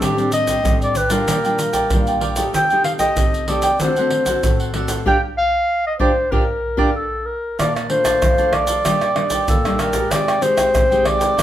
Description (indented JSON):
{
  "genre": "samba and choro",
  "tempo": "95 BPM",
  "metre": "4/4",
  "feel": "straight",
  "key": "G minor, Bb major from 7.6 s",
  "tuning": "A4 = 440 Hz",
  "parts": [
    { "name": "warm clarinet", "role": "melody", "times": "0.0-11.4 s", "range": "G4 to G5", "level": "-18 LUFS", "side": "equal", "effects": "none" },
    { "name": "cavaquinho", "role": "accompaniment", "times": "0.0-11.4 s", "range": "D4 to A5", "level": "-24 LUFS", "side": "right 2 dB", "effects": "none" },
    { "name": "nylon-string guitar", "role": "accompaniment", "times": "0.0-11.4 s", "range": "A2 to G4", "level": "-23 LUFS", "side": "left 1 dB", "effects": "none" },
    { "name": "egg shaker, surdo, pandeiro and tamborim", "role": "percussion", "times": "0.0-11.4 s", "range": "none", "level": "-21 LUFS", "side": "right 1 dB", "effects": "none" }
  ],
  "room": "moderate large studio reverb, RT60 0.9 s",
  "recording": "band playing live in one room",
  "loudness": "-15 LUFS",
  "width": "side -12 dB against mid",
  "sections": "0.0-7.6 A section; 7.6-11.4 B section",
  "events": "band accent 5.1-7.6",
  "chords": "0.0 D7sus4/A; 1.3 Gm7/Bb; 2.5 Am7b5/C; 3.8 D7; 5.1 Gm7; 7.6 Bbmaj7; 8.9 Ebmaj7/Bb; 10.1 Abmaj7/C"
}